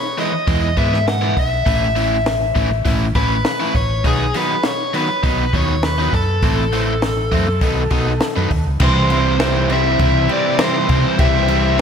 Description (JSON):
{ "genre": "indie rock", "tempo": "101 BPM", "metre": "4/4", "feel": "straight", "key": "unclear", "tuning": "A4 = 440 Hz", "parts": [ { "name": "overdriven electric guitar", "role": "melody", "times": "0.0-11.8 s", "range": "G#4 to F#5", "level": "-20 LUFS", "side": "left 1 dB", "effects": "slapback echo" }, { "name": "overdriven electric guitar", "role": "riff", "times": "0.2-11.8 s", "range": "C3 to E4", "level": "-20 LUFS", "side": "equal", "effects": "slapback echo" }, { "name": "compact cocktail drum kit", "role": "drums", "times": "0.2-11.6 s", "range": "crash cymbal, hi-hat, kick drum, snare drum", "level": "-21 LUFS", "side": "equal", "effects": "none" }, { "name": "hollow-body short-scale fingered electric bass", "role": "bass", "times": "0.5-11.8 s", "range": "A1 to C3", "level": "-20 LUFS", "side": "equal", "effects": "none" } ], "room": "moderate lush hall reverb, RT60 2.3 s", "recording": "big arena sound", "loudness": "-14 LUFS", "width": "side -7 dB against mid", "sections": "0.0-8.8 A section; 8.8-11.8 B section", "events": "none", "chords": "0.0 E; 1.7 A; 4.0 B; 6.4 Am; 7.6 B; 8.8 C", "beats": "0.47 1.07 | 1.66 2.26 2.85 3.45 | 4.04 4.64 5.23 5.83 | 6.42 7.02 7.62 8.21 | 8.81 9.40 10.00 10.60 | 11.19 11.79" }